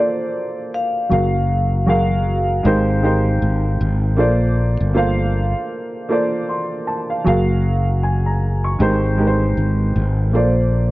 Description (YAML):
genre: lo-fi hip hop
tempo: 78 BPM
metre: 4/4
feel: swing 58% on 16ths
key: unclear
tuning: A4 = 440 Hz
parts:
  - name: vibraphone with soft mallets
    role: melody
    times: 0.0-3.8, 10.3-10.9 s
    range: C5 to F5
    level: -23 LUFS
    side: left 1 dB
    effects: low-pass filter, analog delay
  - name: dark upright piano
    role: accompaniment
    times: 0.0-10.9 s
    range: Gb3 to Db6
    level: -19 LUFS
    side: right 1 dB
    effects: low-pass filter
  - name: sustaining fretless electric bass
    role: bass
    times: 1.1-10.9 s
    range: Gb1 to Bb1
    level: -17 LUFS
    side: equal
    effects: wide subtle chorus
room: light reverb, studio ambience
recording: cassette tape, nothing above 7.5 kHz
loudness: -16 LUFS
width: side -18 dB against mid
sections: 0.0-10.9 A section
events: none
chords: 0.0 Bbmaj9; 1.1 Gbmaj9; 2.6 Abmaj9; 4.2 Bbmaj9; 7.3 Gbmaj9; 8.8 Abmaj9; 10.3 Bbmaj9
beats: 0.34 | 1.11 1.88 2.65 3.42 | 4.19 4.96 5.72 6.49 | 7.26 8.03 8.80 9.57 | 10.34